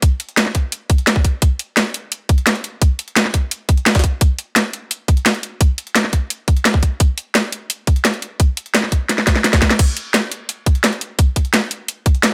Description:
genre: drum and bass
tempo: 172 BPM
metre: 4/4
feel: straight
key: none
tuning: none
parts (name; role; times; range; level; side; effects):
- drum and bass drum kit; drums; 0.0-12.3 s; crash cymbal, hi-hat, snare drum; -18 LUFS; equal; overdrive
- electronic kick drum; drums; 0.0-12.1 s; none; -16 LUFS; equal; overdrive
- jungle sampler-style drum kit; drums; 0.0-12.3 s; hi-hat, snare drum; -28 LUFS; equal; high-pass filter on hats, high-pass filter on snare
room: digital ambience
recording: none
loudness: -17 LUFS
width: mono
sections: 0.0-9.8 A section; 9.8-12.3 A section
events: drop 0.0-9.8, 9.8-12.3; drum fill 9.1-9.8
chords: none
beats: | 0.03 0.37 0.72 1.07 | 1.42 1.77 2.12 2.47 | 2.81 3.16 3.51 3.86 | 4.21 4.56 4.91 5.26 | 5.61 5.96 6.30 6.65 | 7.00 7.35 7.70 8.05 | 8.40 8.75 9.09 9.44 | 9.79 10.14 10.49 10.84 | 11.19 11.54 11.88 12.23

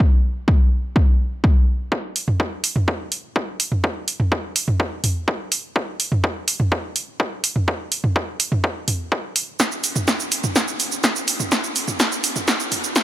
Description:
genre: techno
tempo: 125 BPM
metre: 4/4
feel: straight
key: none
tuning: none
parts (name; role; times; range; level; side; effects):
- electronic kick drum; drums; 0.0-13.0 s; none; -19 LUFS; equal; overdrive, high-pass filter on kick, high-pass filter on room
- punchy analog drum machine; drums; 2.2-13.0 s; hi-hat, shaker, snare drum, toms; -19 LUFS; right 1 dB; sidechain pumping on hats, sidechain pumping on toms, sidechain pumping on perc
room: light reverb, digital ambience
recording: high-pass filter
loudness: -18 LUFS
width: side -14 dB against mid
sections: 0.0-1.9 A section; 1.9-13.0 B section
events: build-up 1.9-13.0; drum fill 9.6-13.0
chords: none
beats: | 0.00 0.48 0.96 1.44 | 1.92 2.40 2.88 3.36 | 3.84 4.32 4.80 5.28 | 5.76 6.24 6.72 7.20 | 7.68 8.16 8.64 9.12 | 9.60 10.08 10.56 11.04 | 11.52 12.00 12.48 12.96

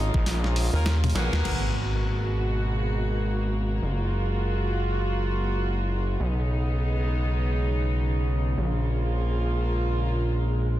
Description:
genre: glitch hop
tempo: free time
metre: none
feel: none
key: G# dorian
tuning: A4 = 441 Hz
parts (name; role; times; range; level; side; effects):
- warm symphonic string section; sustained chords; 0.0-10.8 s; B2 to F#4; -30 LUFS; right 1 dB; sidechain pumping
- gritty driven synth bass; bass; 0.0-10.8 s; F#1 to B1; -25 LUFS; equal; none
- boom bap sampler-style drum kit; drums; 0.3-1.6 s; crash cymbal, hi-hat, snare drum, toms; -32 LUFS; left 1 dB; none
- bright horn section; stabs; 0.7-1.7 s; A#3 to A#4; -34 LUFS; equal; sidechain pumping, ping-pong delay
- rubbery square bass; bass; 0.7-1.4 s; D#2; -22 LUFS; equal; none
- impact; sound effects; 1.4-3.8 s; none; -35 LUFS; equal; none
room: light reverb, digital ambience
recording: dense, heavily limited modern master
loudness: -23 LUFS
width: side -14 dB against mid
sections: 0.0-1.4 A section; 1.4-10.8 B section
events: drum fill 0.9-1.4; impact 1.4-3.8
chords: 0.0 A#m7; 1.4 G#m9; 3.8 F#maj9; 6.2 B69; 8.6 A#m7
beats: free time

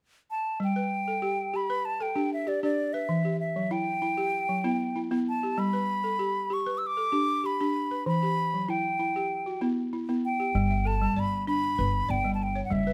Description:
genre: west african traditional, West African string and xylophone music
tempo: 96 BPM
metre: 4/4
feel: straight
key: G lydian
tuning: A4 = 440 Hz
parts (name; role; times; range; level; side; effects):
- hollow concert flute; melody; 0.3-12.9 s; D5 to E6; -31 LUFS; equal; none
- balafon; arpeggios; 0.6-12.9 s; E3 to E5; -32 LUFS; equal; none
- upright bass; bass; 10.5-12.9 s; F#1 to G1; -32 LUFS; equal; none
room: little or no reverb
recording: close, detailed microphones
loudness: -28 LUFS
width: mono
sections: 0.6-10.5 A section; 10.5-12.9 B section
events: none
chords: 0.0 N.C.; 0.6 G; 3.1 Em; 5.6 G; 8.1 Em; 10.5 G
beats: | 0.60 1.23 1.85 2.47 | 3.09 3.71 4.34 4.96 | 5.58 6.20 6.82 7.45 | 8.07 8.69 9.31 9.93 | 10.54 11.16 11.78 12.40

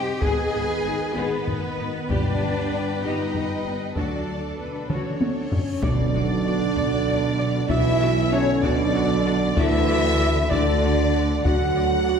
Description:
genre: cinematic, epic orchestral film score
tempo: 64 BPM (dotted quarters)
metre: 6/8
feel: straight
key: B minor from 5.8 s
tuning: A4 = 440 Hz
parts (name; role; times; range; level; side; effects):
- rich studio violin section; melody; 0.0-12.2 s; Cb5 to Ab5; -32 LUFS; left 2 dB; none
- warm symphonic violin section; second line; 0.0-12.2 s; B4 to A5; -34 LUFS; left 2 dB; none
- clear symphonic viola section; accompaniment; 0.0-12.2 s; B3 to D5; -33 LUFS; left 1 dB; none
- dark trombone section; sustained chords; 0.0-12.2 s; B2 to C4; -31 LUFS; right 2 dB; none
- mellow French horn section; sustained chords; 0.0-12.2 s; Eb3 to F#4; -27 LUFS; right 1 dB; none
- mellow tuba; bass; 0.0-12.2 s; G1 to D2; -30 LUFS; right 2 dB; none
- rich symphonic cello section; bass; 0.0-12.2 s; B2 to Ab4; -28 LUFS; right 1 dB; none
- rich symphonic double bass section; bass; 0.2-12.2 s; G1 to D2; -30 LUFS; right 1 dB; none
- taiko ensemble; drums; 0.2-12.0 s; none; -28 LUFS; left 1 dB; none
- timpani; percussion; 2.1-3.0, 5.8-6.7 s; G2 to B2; -29 LUFS; equal; none
- reverse cymbal and impact; sound effects; 5.6-7.7 s; none; -35 LUFS; equal; none
- mellow hollow concert flute; second line; 4.6-12.2 s; B4 to F#5; -34 LUFS; left 3 dB; none
- clear trumpet section; stabs; 4.6-12.2 s; B4 to F#5; -31 LUFS; equal; none
room: wet recital hall reverb, RT60 1.4 s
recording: recorded in a church or concert hall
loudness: -20 LUFS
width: side -6 dB against mid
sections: 0.0-5.8 A section; 5.8-12.2 B section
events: drum fill 4.9-5.8; reverse cymbal 5.6; impact 5.8-7.7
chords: 0.2 Abm; 2.1 G; 4.0 D; 5.8 Bm; 9.6 D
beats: | 0.22 1.16 | 2.09 3.03 | 3.96 4.90 | 5.83 6.77 | 7.70 8.64 | 9.57 10.51 | 11.45

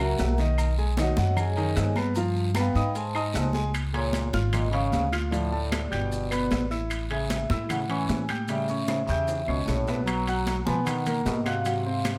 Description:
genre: Afro-Cuban jazz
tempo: 152 BPM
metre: 4/4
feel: straight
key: unclear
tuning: A4 = 441 Hz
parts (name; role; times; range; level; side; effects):
- vibraphone with soft mallets; melody; 0.0-12.2 s; F#4 to B#5; -34 LUFS; equal; plate reverb
- warm upright piano; accompaniment; 0.0-12.2 s; D#3 to Ab6; -33 LUFS; equal; none
- upright bass; bass; 0.0-12.2 s; G1 to Cb3; -30 LUFS; equal; none
- agogo bells and timbales; percussion; 0.0-12.2 s; none; -38 LUFS; equal; none
- congas; percussion; 0.2-12.2 s; none; -37 LUFS; equal; none
- guiro; percussion; 0.2-12.2 s; none; -45 LUFS; equal; none
- maracas; percussion; 0.2-12.2 s; none; -48 LUFS; equal; none
- claves; percussion; 0.6-12.2 s; none; -42 LUFS; equal; none
- trombone with metal mute; second line; 3.9-12.2 s; A2 to Gb3; -35 LUFS; equal; none
room: light reverb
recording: none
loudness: -26 LUFS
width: mono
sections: 0.0-3.7 A section; 3.7-12.2 B section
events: vibraphone solo 0.0-3.7; drum fill 8.9-10.1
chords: 0.0 F#13; 0.6 B69; 2.2 G7; 3.0 G#; 3.7 Db6; 5.3 Dm; 6.1 Gadd9; 6.9 Amaj7; 8.5 A9; 10.1 Cbmaj7; 11.7 Ab6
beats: 0.19 | 0.59 0.98 1.38 1.77 | 2.16 2.56 2.95 3.35 | 3.74 4.14 4.53 4.93 | 5.33 5.72 6.12 6.51 | 6.91 7.30 7.70 8.10 | 8.49 8.89 9.28 9.68 | 10.08 10.47 10.87 11.26 | 11.66 12.05

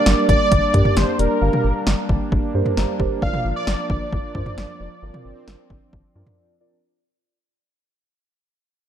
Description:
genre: synth-pop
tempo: 133 BPM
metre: 4/4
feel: straight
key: G minor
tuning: A4 = 441 Hz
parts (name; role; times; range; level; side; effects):
- wide unison lead; melody; 0.0-6.3 s; Bb4 to F5; -22 LUFS; right 1 dB; digital delay
- muted felt-like synth keys; accompaniment; 0.0-6.8 s; F4 to Bb5; -27 LUFS; right 2 dB; chorus, phaser
- brassy analog pad; sustained chords; 0.0-6.8 s; F3 to D4; -26 LUFS; equal; chorus, tremolo
- rubbery square bass; bass; 0.1-6.2 s; F1 to G2; -21 LUFS; equal; none
- punchy analog drum machine; drums; 0.1-6.4 s; hi-hat, kick drum, snare drum, toms; -22 LUFS; equal; overdrive
room: light reverb, digital ambience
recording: dark, warm production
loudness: -17 LUFS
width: side -10 dB against mid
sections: 0.0-6.8 A section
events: fade-out 0.0-6.8; synth keys fill 2.5-3.2; break 6.4-6.8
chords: 0.0 Gm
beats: 0.06 0.52 0.97 | 1.42 1.87 2.32 2.77 | 3.22 3.67 4.12 4.58 | 5.03 5.48 5.93 6.38

